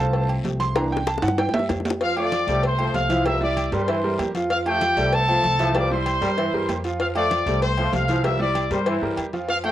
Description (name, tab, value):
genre	latin, salsa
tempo	192 BPM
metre	4/4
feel	straight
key	F major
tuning	A4 = 440 Hz
part	clear baby grand piano	accompaniment	0.0-9.7 s	E3 to C6	-26 LUFS	right 3 dB	cassette tape, plate reverb
part	upright bass	bass	0.0-9.7 s	C2 to G2	-26 LUFS	left 1 dB	none
part	agogo bells and timbales	percussion	0.1-9.7 s	none	-31 LUFS	right 3 dB	none
part	congas	percussion	0.1-9.7 s	none	-35 LUFS	left 3 dB	none
part	cowbell and bongos	percussion	0.1-9.6 s	none	-29 LUFS	left 4 dB	none
part	guiro	percussion	0.1-9.7 s	none	-44 LUFS	left 8 dB	none
part	bright trumpet section	melody	2.0-9.7 s	G4 to E6	-23 LUFS	left 1 dB	cassette tape, plate reverb
part	clear trombone section	second line	2.2-9.7 s	E3 to A3	-28 LUFS	left 1 dB	cassette tape, plate reverb
room	moderate studio reverb, RT60 0.5 s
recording	home recording on cassette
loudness	-20 LUFS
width	side -12 dB against mid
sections	0.0-2.0 A section; 2.0-9.7 B section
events	grand piano solo 0.0-2.0; drum fill 0.8-2.0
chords	0.0 F; 0.8 C7; 2.0 F; 3.3 C7; 4.5 F; 5.8 C7; 7.0 F; 8.2 C7